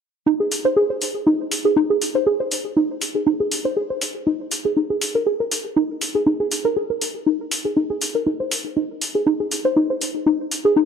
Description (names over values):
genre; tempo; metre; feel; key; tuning
deep house; 120 BPM; 4/4; swing 55% on 16ths; unclear; A4 = 439 Hz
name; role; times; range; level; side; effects
soft round pluck; arpeggios; 0.3-10.8 s; Eb4 to C5; -19 LUFS; equal; chorus, ping-pong delay
electronic hi-hat; drums; 0.5-10.6 s; none; -24 LUFS; left 1 dB; overdrive
room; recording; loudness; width
moderate plate reverb, RT60 2.3 s; none; -18 LUFS; side -7 dB against mid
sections
0.3-10.9 A section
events
none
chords
none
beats
| 0.27 0.77 1.26 1.76 | 2.27 2.77 3.27 3.77 | 4.26 4.76 5.26 5.76 | 6.26 6.76 7.26 7.76 | 8.27 8.77 9.27 9.77 | 10.27 10.77